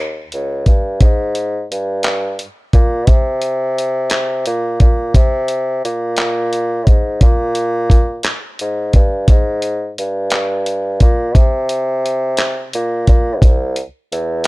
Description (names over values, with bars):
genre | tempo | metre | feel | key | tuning
slow six-eight R&B | 58 BPM (dotted quarters) | 6/8 | straight | Ab major | A4 = 440 Hz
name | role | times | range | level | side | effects
mellow bassoon | bass | 0.0-14.5 s | C2 to C3 | -18 LUFS | equal | none
dusty soul sampler-style drum kit | drums | 0.3-14.5 s | handclaps, hi-hat, kick drum | -12 LUFS | equal | none
room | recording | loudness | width
little or no reverb | dark, warm production | -13 LUFS | side -21 dB against mid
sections
0.0-1.0 A section; 1.0-14.5 B section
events
none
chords
none